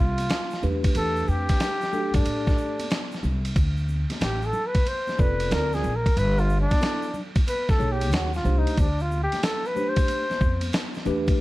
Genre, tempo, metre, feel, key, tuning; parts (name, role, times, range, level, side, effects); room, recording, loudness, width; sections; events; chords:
hip hop, jazz-hop; 92 BPM; 4/4; swing 65% on 16ths; D dorian; A4 = 440 Hz
breathy flugelhorn; melody; 0.0-10.9 s; D4 to C5; -27 LUFS; equal
upright bass; bass; 0.0-11.3 s; F1 to A2; -25 LUFS; equal
dusty soul sampler-style drum kit; drums; 0.2-11.4 s; hi-hat, kick drum, ride cymbal, snare drum; -25 LUFS; equal
congas and egg shaker; percussion; 0.2-11.4 s; -40 LUFS; equal
mellow tine electric piano; accompaniment; 0.6-11.4 s; A3 to D5; -29 LUFS; equal; medium stereo tremolo
small room reverb; vinyl crackle; -22 LUFS; side -18 dB against mid
0.0-3.6 A section; 3.6-11.4 B section
flugelhorn solo 3.6-11.4
0.0 Dm7 (rootless); 0.6 Em7; 3.6 Dm7; 6.2 Gadd9; 8.1 Eb5; 8.8 Dm7